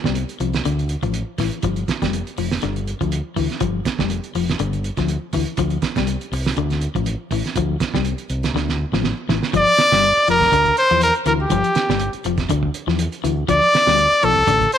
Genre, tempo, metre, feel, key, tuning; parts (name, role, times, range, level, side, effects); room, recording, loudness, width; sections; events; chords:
afrobeat; 122 BPM; 4/4; swing 55% on 16ths; G dorian; A4 = 440 Hz
fingered electric bass; bass; 0.0-14.7 s; F1 to E2; -23 LUFS; equal
cloth-damped thuddy drum kit; drums; 0.0-14.8 s; hi-hat, kick drum, snare drum; -24 LUFS; right 5 dB
electric guitar at the edge of break-up; arpeggios; 0.1-14.7 s; D3 to G3; -24 LUFS; left 11 dB; tremolo
clear trumpet; melody; 9.6-14.8 s; G4 to D5; -14 LUFS; equal
light reverb, small room reverb; 1960s-style stereo, lossy compression artefacts; -17 LUFS; side -9 dB against mid
0.0-9.5 A section; 9.5-14.8 B section
drum fill 8.5-9.5
0.0 Dm7; 1.6 G5; 5.6 Dm7; 9.5 G7(no3); 13.5 Dm7